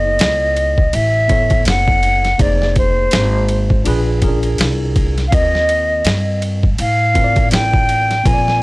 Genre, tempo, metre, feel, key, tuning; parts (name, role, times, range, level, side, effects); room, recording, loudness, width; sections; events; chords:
hip hop, jazz-hop; 82 BPM; 4/4; swing 57% on 16ths; A4 = 437 Hz
mellow hollow silver concert flute; melody; 0.0-8.6 s; C5 to G#5; -16 LUFS; equal
tine electric piano; accompaniment; 0.0-8.6 s; A#3 to D#5; -24 LUFS; equal; overdrive, fast stereo tremolo
upright bass; bass; 0.0-8.6 s; F1 to A2; -18 LUFS; equal
boom bap sampler-style drum kit; drums; 0.2-8.6 s; hi-hat, kick drum, ride cymbal, snare drum; -17 LUFS; equal; overdrive
little or no reverb; dry, gritty hardware recording, cassette tape; -12 LUFS; side -22 dB against mid
0.0-8.6 A section
0.0 F#m7; 2.4 Fm7; 3.9 A#7b9; 5.3 D#maj9#11